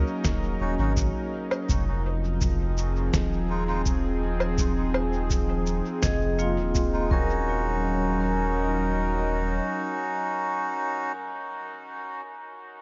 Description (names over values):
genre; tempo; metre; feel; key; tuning
ambient dub; 83 BPM; 4/4; straight; Eb dorian; A4 = 442 Hz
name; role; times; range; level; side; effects
warbly tape-like pad; sustained chords; 0.0-11.1 s; F3 to Eb5; -32 LUFS; equal; chorus, built-in reverb
vibraphone with medium hard mallets; arpeggios; 0.0-12.8 s; Bb3 to C6; -36 LUFS; equal; dub echo
soft dub sub bass; bass; 0.0-9.6 s; Eb1 to Ab1; -30 LUFS; equal; none
electronic kick drum; drums; 0.2-7.3 s; none; -30 LUFS; equal; none
electronic snare drum, shaker and woodblock; drums; 0.2-6.9 s; none; -33 LUFS; equal; dub echo
melodica; stabs; 0.6-11.1 s; Ab3 to Gb4; -33 LUFS; equal; dub echo
room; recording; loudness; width
light reverb; nothing above 7.5 kHz; -26 LUFS; mono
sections
0.0-7.5 A section; 7.5-10.4 B section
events
none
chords
0.0 Ebm7; 1.7 Fm7; 7.1 Ebm7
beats
0.24 0.96 | 1.69 2.41 3.13 3.86 | 4.58 5.30 6.03 6.75 | 7.47 8.19 8.92 9.64